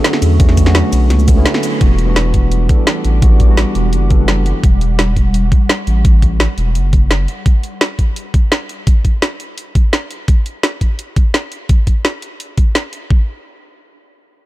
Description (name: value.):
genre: liquid drum and bass.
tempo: 170 BPM.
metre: 4/4.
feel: straight.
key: unclear.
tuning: A4 = 440 Hz.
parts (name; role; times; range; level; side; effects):
tine electric piano; accompaniment; 0.0-4.7 s; D3 to A4; -20 LUFS; equal; tape echo.
ethereal airy pad; sustained chords; 0.0-7.5 s; F#3 to D6; -23 LUFS; right 2 dB; ensemble chorus, built-in reverb, sidechain pumping.
drum and bass drum kit; drums; 0.0-13.0 s; cabasa, hi-hat, ride cymbal, snare drum; -18 LUFS; equal; overdrive.
saturated sub bass; bass; 0.2-7.3 s; E1 to E2; -13 LUFS; equal; none.
electronic kick drum; drums; 0.4-13.2 s; none; -11 LUFS; equal; overdrive.
room: little or no reverb.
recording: dark, warm production.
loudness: -11 LUFS.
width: side -17 dB against mid.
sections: 0.0-1.8 A section; 1.8-13.1 B section; 13.1-14.5 C section.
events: drop 0.0-1.8; break 1.5-1.8; band accent 1.5; filter sweep on ambient pad 1.8-7.5.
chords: 0.0 Bm9; 1.8 Em9; 7.3 Asus4; 13.1 N.C..